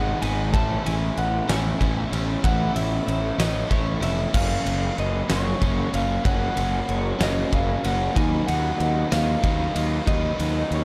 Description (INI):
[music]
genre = post-rock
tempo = 63 BPM (dotted quarters)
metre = 6/8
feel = straight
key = unclear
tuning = A4 = 439 Hz
[part]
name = electric slide guitar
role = melody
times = 0.0-10.8 s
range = C#5 to A5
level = -31 LUFS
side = equal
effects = digital delay
[part]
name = ethereal airy pad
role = sustained chords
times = 0.0-10.8 s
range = D#3 to A#4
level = -39 LUFS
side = equal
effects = none
[part]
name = overdriven electric guitar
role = riff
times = 0.0-10.8 s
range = F#2 to E4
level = -30 LUFS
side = equal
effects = none
[part]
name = fuzz fingered electric bass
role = bass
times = 0.0-10.8 s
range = E#1 to D#2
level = -28 LUFS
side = equal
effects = overdrive
[part]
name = huge arena drum kit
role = drums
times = 0.2-10.8 s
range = crash cymbal, kick drum, ride cymbal, snare drum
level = -29 LUFS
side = equal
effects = none
[sound]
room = little or no reverb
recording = dark, warm production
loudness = -23 LUFS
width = mono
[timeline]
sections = 0.0-10.8 A section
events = none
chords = 0.0 G#m7; 0.5 Aadd9; 4.4 F#maj7; 8.2 D#m7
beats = | 0.54 1.49 | 2.44 3.40 | 4.35 5.31 | 6.26 7.22 | 8.17 9.13 | 10.08